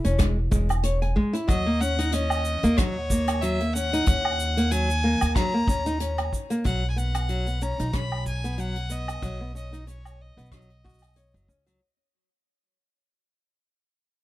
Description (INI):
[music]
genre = folktronica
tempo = 93 BPM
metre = 4/4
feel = swing 56% on 16ths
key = unclear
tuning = A4 = 440 Hz
[part]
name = flamenco guitar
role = arpeggios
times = 0.0-11.8 s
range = F#3 to G#5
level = -27 LUFS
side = equal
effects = vintage 12-bit sampler grit
[part]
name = soft brush drum kit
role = drums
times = 0.0-11.8 s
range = hi-hat, rim click, shaker, woodblock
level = -32 LUFS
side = right 1 dB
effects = none
[part]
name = upright bass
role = bass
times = 0.1-11.8 s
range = E1 to D#2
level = -27 LUFS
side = equal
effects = none
[part]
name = kick drum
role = drums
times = 0.2-11.6 s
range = none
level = -25 LUFS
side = equal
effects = none
[part]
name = clear violin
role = melody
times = 1.5-11.5 s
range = C#5 to B5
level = -30 LUFS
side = left 1 dB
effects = vintage 12-bit sampler grit, tape echo
[sound]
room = little or no reverb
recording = none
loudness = -22 LUFS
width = side -16 dB against mid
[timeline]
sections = 0.0-11.8 A section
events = fade-out 4.9-11.8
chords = 0.0 C#m/E; 1.5 D#m7; 6.7 Badd9